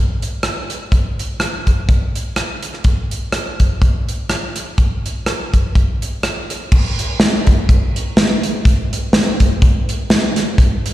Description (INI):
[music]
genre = gospel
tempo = 124 BPM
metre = 4/4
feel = swing 55% on 8ths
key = none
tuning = none
[part]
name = modern studio drum kit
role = drums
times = 0.2-10.9 s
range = crash cymbal, hi-hat, kick drum, rim click, snare drum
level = -14 LUFS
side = equal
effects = none
[sound]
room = moderate lush hall reverb, RT60 2.0 s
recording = live gig heard through the venue's PA, recital hall reverb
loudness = -14 LUFS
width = side -15 dB against mid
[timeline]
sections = 0.0-6.7 A section; 6.7-10.9 B section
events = none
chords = none